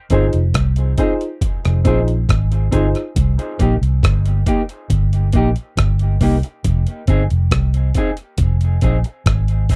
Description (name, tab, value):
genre	dub reggae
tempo	69 BPM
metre	4/4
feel	straight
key	unclear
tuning	A4 = 440 Hz
part	mellow electric guitar	accompaniment	0.1-9.8 s	Bb3 to Ab4	-25 LUFS	equal	high-pass filter, dub echo
part	dark concert grand piano	stabs	0.1-2.9 s	Eb4 to C5	-26 LUFS	equal	dub echo
part	vintage muted fingered electric bass	bass	0.1-9.8 s	F1 to C2	-18 LUFS	equal	none
part	breakbeat sampler-style drum kit	drums	0.1-9.8 s	hi-hat, kick drum, rim click	-22 LUFS	equal	none
room	little or no reverb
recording	dry, close 1970s-style studio recording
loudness	-17 LUFS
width	mono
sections	0.0-9.8 A section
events	none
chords	0.0 Fm7; 3.2 Cm7; 6.6 Fm7